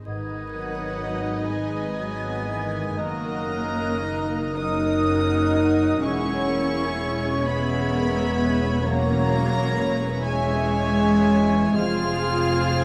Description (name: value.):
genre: classical.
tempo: 36-44 BPM (dotted quarters).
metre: 12/8.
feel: rubato.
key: unclear.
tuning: A4 = 439 Hz.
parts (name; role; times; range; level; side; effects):
warm clarinet; second line; 0.0-12.8 s; G#4 to B4; -38 LUFS; equal; none.
warm chamber viola section; accompaniment; 0.0-12.8 s; D#3 to Ab4; -33 LUFS; equal; none.
dark cor anglais; second line; 0.1-12.8 s; C5 to D#5; -36 LUFS; equal; none.
dark studio violin section; second line; 0.1-12.8 s; G#4 to E5; -36 LUFS; equal; none.
flute section; second line; 0.1-12.8 s; F#6 to G#6; -39 LUFS; equal; none.
concert harp; arpeggios; 0.1-12.8 s; E2 to D#5; -35 LUFS; equal; none.
warm symphonic double bass section; bass; 0.1-12.8 s; E1 to G#1; -30 LUFS; equal; none.
warm symphonic violin section; melody; 0.5-12.8 s; F#5 to F6; -34 LUFS; equal; none.
warm French horn section; sustained chords; 0.5-12.8 s; F#3 to F4; -29 LUFS; equal; none.
warm studio cello section; bass; 0.5-12.8 s; F#3 to F4; -31 LUFS; equal; none.
room: wet recital hall reverb, RT60 1.4 s.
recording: vinyl crackle.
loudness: -23 LUFS.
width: mono.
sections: 0.1-12.8 A section.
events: none.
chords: 0.1 G#m; 3.0 D#m/F#; 6.0 C#m/E; 11.8 Fm.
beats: | 0.06 1.50 2.98 4.57 | 6.05 7.47 8.85 10.23 | 11.77.